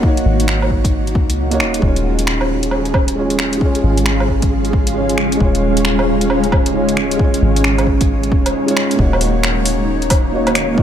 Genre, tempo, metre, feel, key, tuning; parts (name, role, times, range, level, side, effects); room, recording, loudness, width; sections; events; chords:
future garage; 134 BPM; 4/4; swing 63% on 16ths; A4 = 438 Hz
felt-muted upright piano; accompaniment; 0.0-10.8 s; Ab3 to Db5; -19 LUFS; right 2 dB; sidechain pumping, tape echo
granular cloud pad; sustained chords; 0.0-10.8 s; Ab3 to Gb5; -20 LUFS; equal; built-in reverb, sidechain pumping
soft 808-style bass; bass; 0.0-10.8 s; Eb1 to Db2; -20 LUFS; equal; sidechain pumping
electronic kick drum; drums; 0.0-10.8 s; -16 LUFS; equal; overdrive
deep house drum kit; drums; 0.2-10.7 s; finger snaps, hi-hat, woodblock; -21 LUFS; equal; overdrive
flickering grainy texture; texture; 2.6-9.0 s; Ab4; -30 LUFS; right 2 dB
light reverb; -13 LUFS; side -9 dB against mid
0.0-9.0 A section; 9.0-10.8 B section
0.0 Ebm7; 1.8 Db/Eb; 9.0 Ebm7